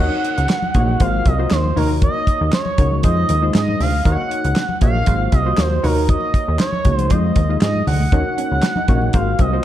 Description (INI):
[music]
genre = early-eighties boogie funk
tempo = 118 BPM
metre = 4/4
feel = straight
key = Eb dorian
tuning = A4 = 440 Hz
[part]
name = expressive synth lead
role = melody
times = 0.0-9.6 s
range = Bb4 to Gb5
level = -22 LUFS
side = right 2 dB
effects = chorus, slapback echo
[part]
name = funky polysynth comp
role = accompaniment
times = 0.0-9.6 s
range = Ab3 to Eb5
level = -24 LUFS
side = left 2 dB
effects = chorus
[part]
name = plucky analog bass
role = bass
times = 0.0-9.6 s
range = Ab1 to Ab2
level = -19 LUFS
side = equal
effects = none
[part]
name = congas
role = percussion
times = 0.1-9.5 s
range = none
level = -28 LUFS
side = left 3 dB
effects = none
[part]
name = damped 70s drum kit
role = drums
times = 0.2-9.5 s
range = handclaps, hi-hat, kick drum, snare drum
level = -18 LUFS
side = equal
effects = none
[part]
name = electric guitar at the edge of break-up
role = riff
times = 8.1-9.5 s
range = C4 to Eb4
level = -30 LUFS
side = right 2 dB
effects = analog chorus
[sound]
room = light reverb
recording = dark, warm production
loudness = -15 LUFS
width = side -12 dB against mid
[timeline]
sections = 0.0-9.6 A section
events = none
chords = 0.0 Ebm7; 1.0 Ab13; 1.8 Ebm7; 3.0 Fm7; 4.1 Ebm7; 5.1 Ab13; 5.8 Ebm7; 7.1 Fm7; 8.1 Ebm7; 9.1 Ab13